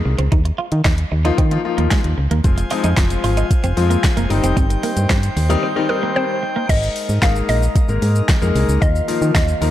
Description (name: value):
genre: dance-pop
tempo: 113 BPM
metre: 4/4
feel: straight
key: Ab major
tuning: A4 = 440 Hz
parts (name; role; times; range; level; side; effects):
- warm concert grand piano; accompaniment; 0.0-9.7 s; Eb3 to Bb4; -22 LUFS; left 5 dB; sidechain pumping
- solid FM bass; bass; 0.0-9.7 s; F1 to Eb3; -18 LUFS; equal; sidechain pumping
- twelve-string electric guitar; riff; 0.1-6.6 s; Ab3 to F4; -26 LUFS; right 5 dB; lush chorus
- smooth R&B drum kit; drums; 0.2-9.7 s; crash cymbal, handclaps, hi-hat, kick drum, shaker, snare drum; -19 LUFS; equal; none
- chamber organ, sparkling flutes; sustained chords; 2.4-9.7 s; Eb3 to Ab5; -26 LUFS; equal; sidechain pumping
- swell; sound effects; 5.3-6.7 s; none; -32 LUFS; equal; none
- mallet-like synth pluck; melody; 5.9-9.7 s; Bb4 to F5; -23 LUFS; left 1 dB; chorus
room: light reverb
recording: dark, warm production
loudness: -15 LUFS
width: side -13 dB against mid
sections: 0.0-6.7 A section; 6.7-9.7 B section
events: break 5.6-6.7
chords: 0.3 Ebsus2; 2.4 Fm; 4.3 Cm; 6.7 Absus2; 8.8 Ebsus2